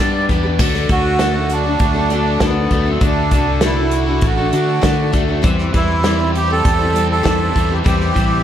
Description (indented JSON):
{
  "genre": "folk rock and heartland rock",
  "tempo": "99 BPM",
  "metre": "4/4",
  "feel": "straight",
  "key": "D mixolydian",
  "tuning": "A4 = 440 Hz",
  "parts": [
    { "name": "accordion", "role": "melody", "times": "0.0-8.4 s", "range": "B3 to D5", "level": "-20 LUFS", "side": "right 3 dB", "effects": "light tremolo tuning, analog delay" },
    { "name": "picked steel-string acoustic guitar", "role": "accompaniment", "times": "0.0-8.4 s", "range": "D3 to C5", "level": "-21 LUFS", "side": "left 5 dB", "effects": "none" },
    { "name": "overdriven electric guitar", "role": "riff", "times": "0.0-8.4 s", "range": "D3 to G4", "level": "-23 LUFS", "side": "equal", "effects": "none" },
    { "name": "fingered electric bass", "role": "bass", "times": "0.0-8.4 s", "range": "A1 to G3", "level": "-19 LUFS", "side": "equal", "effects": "none" },
    { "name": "soft brush drum kit", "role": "drums", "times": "0.3-8.3 s", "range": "crash cymbal, hi-hat, kick drum, snare drum", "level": "-18 LUFS", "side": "equal", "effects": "none" },
    { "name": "tonewheel organ", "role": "sustained chords", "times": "0.6-8.4 s", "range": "F#3 to G4", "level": "-31 LUFS", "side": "equal", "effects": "none" }
  ],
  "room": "small room ambience",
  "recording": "none",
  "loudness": "-13 LUFS",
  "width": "side -10 dB against mid",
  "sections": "0.6-8.4 A section",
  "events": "none",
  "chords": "0.0 G; 0.6 D; 5.4 C/E"
}